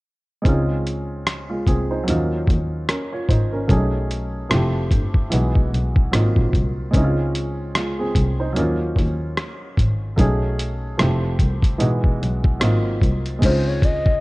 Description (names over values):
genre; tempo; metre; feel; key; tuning
R&B, neo-soul; 74 BPM; 4/4; swing 58% on 16ths; Db major; A4 = 440 Hz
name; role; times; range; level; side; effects
warm baby grand piano; accompaniment; 0.4-14.2 s; E3 to Db5; -24 LUFS; right 1 dB; none
rich double bass; bass; 0.5-14.2 s; F1 to B2; -22 LUFS; equal; none
boom bap sampler-style drum kit; drums; 0.5-14.2 s; crash cymbal, hi-hat, kick drum, rim click; -20 LUFS; equal; none
hollow clarinet-like synth lead; melody; 13.4-14.2 s; C5 to Eb5; -22 LUFS; left 2 dB; chorus
room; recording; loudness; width
light reverb, digital ambience; worn, warbling old tape, cassette tape, warbly pitch drift; -18 LUFS; side -21 dB against mid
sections
0.5-13.4 A section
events
none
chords
0.5 Dbmaj9; 2.1 Ebm9; 3.7 Cb13; 4.5 Fmaj9; 5.3 Emaj9/B; 6.1 Ab13; 6.9 Dbmaj9; 8.6 Ebm9; 10.2 Cb13; 11.0 Fmaj9; 11.8 Emaj9/B; 12.6 Ab13; 13.4 Dbmaj9